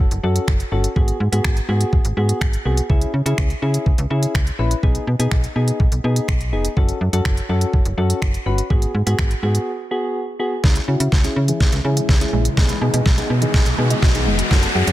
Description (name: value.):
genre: dance-pop.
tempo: 124 BPM.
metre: 4/4.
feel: straight.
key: C# minor.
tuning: A4 = 440 Hz.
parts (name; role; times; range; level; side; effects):
soft electric-piano-like synth keys; accompaniment; 0.0-14.9 s; B3 to B4; -24 LUFS; left 1 dB; chorus, sidechain pumping, low-pass filter.
slap-like FM bass; bass; 0.0-14.9 s; E#1 to C#3; -19 LUFS; equal; sidechain pumping.
smooth R&B drum kit; drums; 0.1-14.9 s; finger snaps, hi-hat, kick drum, snare drum; -19 LUFS; equal; soft clipping on snare.
granular cloud pad; sustained chords; 11.3-14.9 s; C#3 to F#4; -29 LUFS; left 2 dB; none.
mallet-like synth pluck; arpeggios; 10.6-14.9 s; D#3 to G#6; -28 LUFS; right 2 dB; chorus, sidechain pumping, low-pass filter, ping-pong delay.
riser; sound effects; 11.7-14.9 s; none; -26 LUFS; equal; none.
room: light reverb.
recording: dense, heavily limited modern master.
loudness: -16 LUFS.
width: side -15 dB against mid.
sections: 0.0-10.6 A section; 10.6-14.9 B section.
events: break 9.7-10.6; build-up 10.6-14.9; drum fill 10.6-14.9; riser 11.7-14.9.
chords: 0.0 F#m; 1.0 G#m7; 2.9 C#m; 4.8 B6; 6.8 F#m; 8.7 G#m7; 10.6 C#m; 12.6 B6.